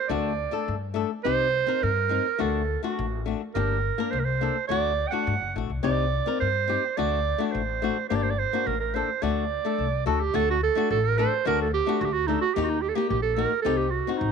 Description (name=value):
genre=klezmer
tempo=106 BPM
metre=2/4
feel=straight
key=D phrygian dominant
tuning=A4 = 440 Hz
part: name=breathy clarinet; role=melody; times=0.0-14.3 s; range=Eb4 to G5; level=-26 LUFS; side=right 9 dB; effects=none
part: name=flamenco guitar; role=accompaniment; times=0.1-14.3 s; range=A3 to Bb4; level=-29 LUFS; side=left 13 dB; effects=none
part: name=upright bass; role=bass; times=0.1-14.3 s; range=F#1 to G2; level=-29 LUFS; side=left 2 dB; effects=none
room=light reverb, small room ambience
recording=1960s-style stereo with parts hard left and right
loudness=-23 LUFS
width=side -6 dB against mid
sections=0.0-1.2 A section; 1.2-10.3 A section; 10.3-14.3 B section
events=speeding up 0.0-14.3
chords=0.1 D; 1.2 Cm; 2.4 D; 3.5 Gm; 4.7 D; 5.8 Cm; 7.0 D; 8.1 Gm; 9.2 D; 12.6 Eb; 13.7 Cm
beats=| 0.09 0.67 | 1.25 1.82 | 2.40 2.98 | 3.55 4.12 | 4.69 5.26 | 5.83 6.40 | 6.97 7.53 | 8.10 8.66 | 9.22 9.78 | 10.34 10.90 | 11.45 12.01 | 12.56 13.11 | 13.66 14.21